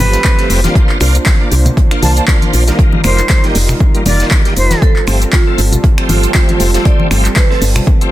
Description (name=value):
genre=deep house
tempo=118 BPM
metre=4/4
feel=swing 56% on 16ths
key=unclear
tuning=A4 = 441 Hz
part: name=bright reedy jazz flute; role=melody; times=0.0-4.8 s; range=B4 to A5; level=-20 LUFS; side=right 1 dB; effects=tape echo
part: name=warm analog pad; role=sustained chords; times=0.0-8.1 s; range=G3 to C5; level=-22 LUFS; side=right 1 dB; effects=chorus, sidechain pumping
part: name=bright tonewheel organ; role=stabs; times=0.0-8.1 s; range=Eb3 to D5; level=-19 LUFS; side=equal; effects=chorus vibrato, slow rotary speaker, vintage 12-bit sampler grit, sidechain pumping
part: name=woody FM bass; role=bass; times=0.0-7.8 s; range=F1 to C2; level=-12 LUFS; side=equal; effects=tube saturation, sidechain pumping
part: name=deep house drum kit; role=drums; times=0.0-8.1 s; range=finger snaps, handclaps, hi-hat, shaker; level=-18 LUFS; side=equal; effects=none
part: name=deep reggae drum kit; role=drums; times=0.0-8.0 s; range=hi-hat, snare drum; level=-27 LUFS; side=right 4 dB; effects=sidechain pumping on hats, high-pass filter on hats, high-pass filter on snare, high-pass filter on room
part: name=congas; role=percussion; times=0.0-7.8 s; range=none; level=-19 LUFS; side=left 2 dB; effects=none
part: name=electronic kick drum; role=drums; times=0.2-8.0 s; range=none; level=-11 LUFS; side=equal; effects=none
part: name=vibraphone with medium hard mallets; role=melody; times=4.8-7.6 s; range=F4 to D5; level=-20 LUFS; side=right 6 dB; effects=ping-pong delay
room=studio reverb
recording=dense, heavily limited modern master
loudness=-9 LUFS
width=side -15 dB against mid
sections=0.0-8.1 A section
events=none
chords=0.0 G9sus4; 0.8 C9sus4; 2.8 F9sus4; 4.8 G9sus4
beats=0.24 | 0.75 1.26 1.77 2.28 | 2.79 3.30 3.80 4.31 | 4.82 5.33 5.84 6.35 | 6.86 7.36 7.87